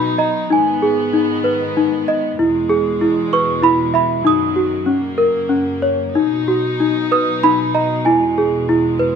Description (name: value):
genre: children's music, lullaby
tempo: 96 BPM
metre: 3/4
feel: rubato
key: B major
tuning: A4 = 440 Hz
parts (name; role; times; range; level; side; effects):
- small celesta; melody; 0.0-9.2 s; C#4 to D#6; -14 LUFS; equal; none
- rich chamber string section; sustained chords; 0.0-9.2 s; E2 to D#4; -24 LUFS; equal; none
room: moderate recital hall reverb, RT60 1.6 s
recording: none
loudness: -14 LUFS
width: side -7 dB against mid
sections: 0.0-9.2 A section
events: none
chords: 0.0 B; 0.5 G#m; 2.4 E; 4.2 B/F#; 4.9 F#; 6.2 B; 8.1 E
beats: | 0.51 1.14 1.77 | 2.39 3.01 3.63 | 4.25 4.87 5.51 | 6.16 6.80 7.43 | 8.06 8.68